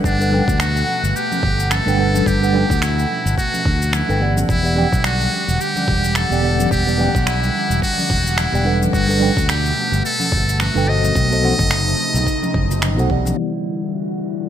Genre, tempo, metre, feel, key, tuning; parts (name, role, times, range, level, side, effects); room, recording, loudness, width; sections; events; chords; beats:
sunset chillout; 108 BPM; 4/4; swing 57% on 16ths; E minor; A4 = 441 Hz
mellow tine electric piano; accompaniment; 0.0-14.5 s; B2 to G5; -22 LUFS; moving between left 3 dB and right 4 dB; slow stereo tremolo, auto-pan
airy breathy pad; sustained chords; 0.0-14.5 s; B2 to F#5; -25 LUFS; left 1 dB; chorus
fingered electric bass; bass; 0.0-13.3 s; E1 to D2; -19 LUFS; equal
electronic kick drum; drums; 0.0-13.2 s; -21 LUFS; equal; overdrive, studio reverb
trumpet with metal mute; melody; 0.1-14.5 s; D4 to D#5; -21 LUFS; equal; ping-pong delay
electronic shaker and finger snaps; drums; 0.1-13.4 s; -26 LUFS; right 1 dB; overdrive, low-pass filter on perc, studio reverb, low-pass filter on snare
congas; percussion; 0.3-13.4 s; -29 LUFS; right 2 dB
downlifter; sound effects; 13.4-14.5 s; -40 LUFS; left 4 dB
moderate plate reverb, RT60 3.1 s; bright 1980s-style digital production, low-pass filter; -15 LUFS; side -10 dB against mid
0.0-13.4 A section; 13.4-14.5 B section
filter sweep 13.4-14.5
0.0 Gmaj9; 4.5 Em9; 8.9 Gmaj9; 11.2 B7b9; 13.4 Em9
| 0.04 0.60 1.16 1.71 | 2.27 2.82 3.38 3.93 | 4.49 5.04 5.60 6.16 | 6.71 7.27 7.82 8.38 | 8.93 9.49 10.04 10.60 | 11.15 11.71 12.27 12.82 | 13.38 13.93 14.49